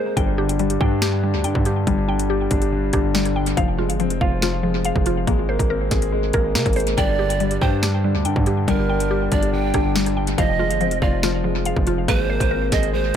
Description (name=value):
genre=hip hop, drill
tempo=141 BPM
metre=4/4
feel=half-time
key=G phrygian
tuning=A4 = 440 Hz
part: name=breathy pan flute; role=second line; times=0.0-0.1, 7.0-13.2 s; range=Bb4 to G5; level=-25 LUFS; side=right 7 dB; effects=analog delay
part: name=dark grand piano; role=accompaniment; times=0.0-13.2 s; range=G2 to Ab4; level=-23 LUFS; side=left 2 dB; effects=low-pass filter, analog delay
part: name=mallet-like synth pluck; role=arpeggios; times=0.0-13.2 s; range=F3 to G5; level=-26 LUFS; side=left 2 dB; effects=chorus, low-pass filter, analog delay
part: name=distorted 808-style bass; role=bass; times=0.2-13.1 s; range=F1 to C3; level=-23 LUFS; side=equal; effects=distortion
part: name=drill drum kit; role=drums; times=0.2-13.2 s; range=hi-hat, kick drum, rim click, snare drum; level=-23 LUFS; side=equal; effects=analog delay
room=light reverb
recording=echo-heavy mix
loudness=-18 LUFS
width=side -9 dB against mid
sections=0.2-13.2 A section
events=none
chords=0.2 G5; 3.6 Fm; 5.3 Abadd9; 7.0 G5; 10.4 Fm7; 12.1 Abadd9